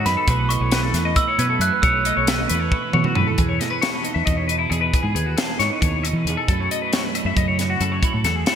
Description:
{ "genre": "math rock and midwest emo", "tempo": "271 BPM (eighths)", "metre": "7/8", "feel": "straight", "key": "E major", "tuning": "A4 = 442 Hz", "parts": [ { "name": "twelve-string electric guitar", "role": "accompaniment", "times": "0.0-8.6 s", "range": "E2 to A4", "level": "-27 LUFS", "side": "right 9 dB", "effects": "wide subtle chorus" }, { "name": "twelve-string electric guitar", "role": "arpeggios", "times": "0.0-8.6 s", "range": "E4 to E5", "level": "-23 LUFS", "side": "left 6 dB", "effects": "wide subtle chorus" }, { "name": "fingered electric bass", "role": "bass", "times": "0.0-8.4 s", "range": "B1 to E3", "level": "-23 LUFS", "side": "equal", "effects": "none" }, { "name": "glockenspiel with rubber mallets", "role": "melody", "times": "0.1-2.9 s", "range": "B5 to G#6", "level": "-24 LUFS", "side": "right 3 dB", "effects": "none" }, { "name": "crisp fusion drum kit", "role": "drums", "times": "0.1-8.6 s", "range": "hi-hat, kick drum, snare drum, toms", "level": "-22 LUFS", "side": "equal", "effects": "none" } ], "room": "moderate lush hall reverb, RT60 2.3 s", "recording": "bright 1980s-style digital production", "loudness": "-18 LUFS", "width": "side -8 dB against mid", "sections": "0.0-3.4 A section; 3.4-8.6 B section", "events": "drum fill 2.7-3.4", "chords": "0.3 B7sus4; 3.4 Emaj7; 6.5 F#m7", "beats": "0.06 | 0.28 0.50 0.72 0.94 1.16 1.39 1.61 | 1.83 2.05 2.27 2.49 2.71 2.93 3.15 | 3.38 3.60 3.82 4.04 4.26 4.48 4.71 | 4.93 5.15 5.37 5.59 5.81 6.03 6.25 | 6.47 6.70 6.92 7.14 7.36 7.58 7.80 | 8.02 8.24 8.46" }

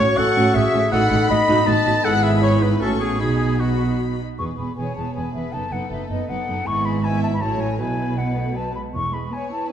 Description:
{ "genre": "quick classical-period movement for symphony orchestra", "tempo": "158 BPM", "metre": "3/4", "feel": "straight", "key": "E major", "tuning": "A4 = 440 Hz", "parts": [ { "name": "warm chamber violin section", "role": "melody", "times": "0.0-9.7 s", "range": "B4 to C#6", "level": "-33 LUFS", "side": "left 7 dB", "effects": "none" }, { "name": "clear oboe", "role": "second line", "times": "0.0-4.0 s", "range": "F#4 to B5", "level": "-24 LUFS", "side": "equal", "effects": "none" }, { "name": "mellow clarinet", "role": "second line", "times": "0.0-4.0 s", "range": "B3 to D#5", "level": "-24 LUFS", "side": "left 2 dB", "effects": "none" }, { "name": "mellow concert flute", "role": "second line", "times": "0.0-9.7 s", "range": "F#4 to C#6", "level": "-27 LUFS", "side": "left 2 dB", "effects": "none" }, { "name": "rich chamber violin section", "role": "second line", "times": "0.0-9.7 s", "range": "F#4 to B5", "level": "-30 LUFS", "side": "left 2 dB", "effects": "none" }, { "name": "warm chamber viola section", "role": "accompaniment", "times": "0.0-9.7 s", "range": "E3 to G#4", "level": "-27 LUFS", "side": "right 2 dB", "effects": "none" }, { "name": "dark French horn section", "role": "sustained chords", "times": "0.0-4.2 s", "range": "A3 to F#4", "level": "-26 LUFS", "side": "left 2 dB", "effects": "none" }, { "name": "warm chamber cello section", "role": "bass", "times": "0.0-9.2 s", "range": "E2 to B2", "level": "-26 LUFS", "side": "right 2 dB", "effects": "none" }, { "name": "warm chamber double bass section", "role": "bass", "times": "0.0-9.2 s", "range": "E1 to B1", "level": "-25 LUFS", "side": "right 3 dB", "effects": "none" } ], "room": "moderate scoring stage reverb, RT60 1.7 s", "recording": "dark, warm production", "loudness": "-18 LUFS", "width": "side -9 dB against mid", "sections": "0.0-4.4 A section; 4.4-9.7 B section", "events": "none", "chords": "0.0 F#m/A; 0.9 B7/A; 2.0 E/G#; 2.8 F#m/A; 3.2 B; 4.4 E; 5.5 B7/F#; 6.7 E/G#; 7.4 F#m7/A; 7.8 Bsus4; 8.6 B5; 8.9 E", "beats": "0.17 0.55 | 0.92 1.29 1.67 | 2.04 2.42 2.81 | 3.20 3.60 4.00 | 4.39 4.78 5.16 | 5.54 5.91 6.29 | 6.66 7.03 7.41 | 7.79 8.17 8.56 | 8.94 9.32 9.70" }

